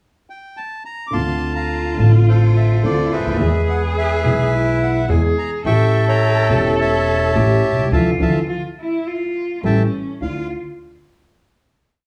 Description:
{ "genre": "tango", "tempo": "106 BPM", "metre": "4/4", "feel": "rubato", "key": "unclear", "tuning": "A4 = 440 Hz", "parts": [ { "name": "bandoneon", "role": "melody", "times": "0.3-10.5 s", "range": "G#4 to D6", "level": "-24 LUFS", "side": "equal", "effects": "none" }, { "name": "warm cello", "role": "second line", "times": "1.1-10.5 s", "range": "C#4 to A4", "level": "-25 LUFS", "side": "equal", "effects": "none" }, { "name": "dark concert grand piano", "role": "accompaniment", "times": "1.1-10.5 s", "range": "E1 to G#4", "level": "-23 LUFS", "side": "equal", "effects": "none" }, { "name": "upright bass", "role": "bass", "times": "1.1-10.4 s", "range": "E1 to E2", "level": "-20 LUFS", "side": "equal", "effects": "none" } ], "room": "moderate large studio reverb, RT60 1.0 s", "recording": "band playing live in one room, small room reverb", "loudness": "-17 LUFS", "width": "mono", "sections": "0.0-1.1 pickup bar; 1.1-10.2 A section; 10.2-12.1 final chord", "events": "band accent 7.9-10.2", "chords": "0.0 N.C.; 1.1 Dm7; 3.4 E; 5.7 A7; 7.9 Dmadd9; 9.6 A7; 10.2 Dmadd9" }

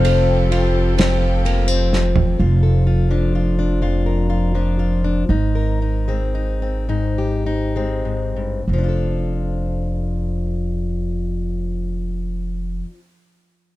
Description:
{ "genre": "acoustic folk-pop ballad", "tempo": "31-43 BPM (dotted quarters)", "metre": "6/8", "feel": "straight", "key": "F major", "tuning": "A4 = 442 Hz", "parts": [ { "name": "nylon-string guitar", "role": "melody", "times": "0.0-1.9 s", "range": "F5", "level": "-30 LUFS", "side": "right 4 dB", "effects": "none" }, { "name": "fingerpicked plugged-in steel-string acoustic guitar", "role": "accompaniment", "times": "0.0-13.0 s", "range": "F2 to Bb4", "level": "-22 LUFS", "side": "left 3 dB", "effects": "none" }, { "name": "warm chamber string section", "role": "sustained chords", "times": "0.0-2.4 s", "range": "F3 to A4", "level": "-27 LUFS", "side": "equal", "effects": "none" }, { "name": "upright bass", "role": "bass", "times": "0.0-12.8 s", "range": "F1 to Ab1", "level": "-19 LUFS", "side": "right 1 dB", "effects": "none" }, { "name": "loose indie drum kit", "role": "drums", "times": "0.0-2.4 s", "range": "ride cymbal, snare drum, toms", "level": "-23 LUFS", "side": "right 3 dB", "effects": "none" } ], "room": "little or no reverb", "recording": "dark, warm production", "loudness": "-17 LUFS", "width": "side -16 dB against mid", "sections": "0.0-2.4 A section; 2.4-8.7 B section; 8.7-12.5 C section", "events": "drum fill 1.9-2.4; slowing down 2.4-8.7", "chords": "0.0 F; 2.4 F6; 5.3 Abmaj7; 8.7 F6" }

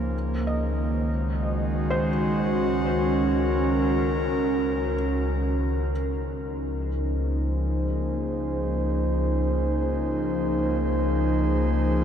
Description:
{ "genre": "ambient", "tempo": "free time", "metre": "none", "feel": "none", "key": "Db major", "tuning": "A4 = 435 Hz", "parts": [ { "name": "airy breathy pad", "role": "sustained chords", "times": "0.0-12.0 s", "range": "Db2 to C5", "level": "-23 LUFS", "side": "equal", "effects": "chorus" }, { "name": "felt-muted upright piano", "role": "arpeggios", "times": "0.0-5.9 s", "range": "C5 to Eb5", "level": "-35 LUFS", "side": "left 1 dB", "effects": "diffuse ambient delay" } ], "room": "wet huge ambient reverb, RT60 8.3 s", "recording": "dark, warm production", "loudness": "-23 LUFS", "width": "side -8 dB against mid", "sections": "0.0-5.9 A section; 5.9-12.0 B section", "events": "none", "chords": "0.1 Ebm/Db; 5.9 Dbadd9" }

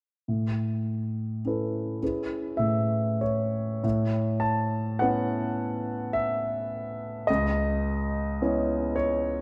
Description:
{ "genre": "classical, impressionist solo piano", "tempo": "46-56 BPM", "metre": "3/4", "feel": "rubato", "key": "A lydian", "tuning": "A4 = 441 Hz", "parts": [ { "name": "warm grand piano", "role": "solo", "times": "0.3-9.4 s", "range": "C#2 to A5", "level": "-28 LUFS", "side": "equal", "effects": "none" } ], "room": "moderate scoring stage reverb, RT60 1.6 s", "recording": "dark, warm production", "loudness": "-28 LUFS", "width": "mono", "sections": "0.3-3.8 A section; 3.8-9.4 B section", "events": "none", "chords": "0.3 Aadd9; 2.0 C#m7; 3.8 A69; 7.3 C#m7" }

